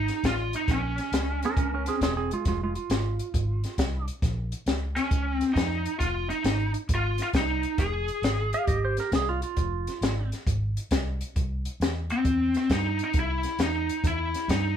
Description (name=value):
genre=electric blues shuffle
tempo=135 BPM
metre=4/4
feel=swing 66% on 8ths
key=F minor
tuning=A4 = 440 Hz
part: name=lead guitar through a small cranked amp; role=melody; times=0.0-2.0, 5.0-9.1, 12.1-14.8 s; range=C4 to Ab4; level=-28 LUFS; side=equal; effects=overdrive
part: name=vintage muted fingered electric bass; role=bass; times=0.0-14.8 s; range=E1 to G2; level=-30 LUFS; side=equal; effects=none
part: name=compact cocktail drum kit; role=drums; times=0.1-14.6 s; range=hi-hat, kick drum, snare drum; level=-28 LUFS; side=left 1 dB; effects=none
part: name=clean lap steel guitar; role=second line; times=1.5-4.0, 8.5-10.3 s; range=Ab3 to F5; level=-30 LUFS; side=right 5 dB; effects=none
room=moderate small room reverb, RT60 0.5 s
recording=band playing live in one room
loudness=-24 LUFS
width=side -9 dB against mid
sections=0.0-14.8 A section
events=none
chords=0.0 Fm7; 0.7 Bbm9; 2.5 Fm; 4.2 Bbm; 6.0 Fm; 11.4 C